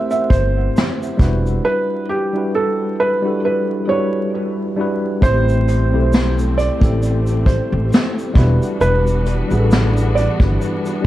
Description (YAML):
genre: lo-fi hip hop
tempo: 67 BPM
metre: 4/4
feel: swing 57% on 16ths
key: A dorian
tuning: A4 = 440 Hz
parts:
  - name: felt-muted upright piano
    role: melody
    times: 0.0-10.8 s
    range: G4 to E5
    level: -21 LUFS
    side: right 2 dB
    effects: low-pass filter, dub echo
  - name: tine electric piano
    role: accompaniment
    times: 0.0-11.1 s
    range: G3 to C5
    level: -21 LUFS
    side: left 1 dB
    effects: overdrive, fast stereo tremolo, low-pass filter, dub echo
  - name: vintage brush drum kit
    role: drums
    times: 0.1-11.0 s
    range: hi-hat, kick drum, shaker, snare drum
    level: -16 LUFS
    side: equal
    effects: none
  - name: upright bass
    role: bass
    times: 0.3-10.6 s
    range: E1 to B1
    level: -17 LUFS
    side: equal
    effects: none
  - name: warm studio string section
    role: sustained chords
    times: 5.2-11.1 s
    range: E3 to F#4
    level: -28 LUFS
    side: left 2 dB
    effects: low-pass filter
room: light reverb, studio reverb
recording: echo-heavy mix, vinyl crackle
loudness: -14 LUFS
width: side -14 dB against mid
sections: 0.0-5.2 A section; 5.2-11.1 B section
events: drums muted 1.6-5.2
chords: 0.0 Am9; 1.2 Em9; 5.2 Am9; 8.4 Em9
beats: 0.74 | 1.64 2.53 3.43 4.33 | 5.22 6.12 7.01 7.91 | 8.80 9.70 10.59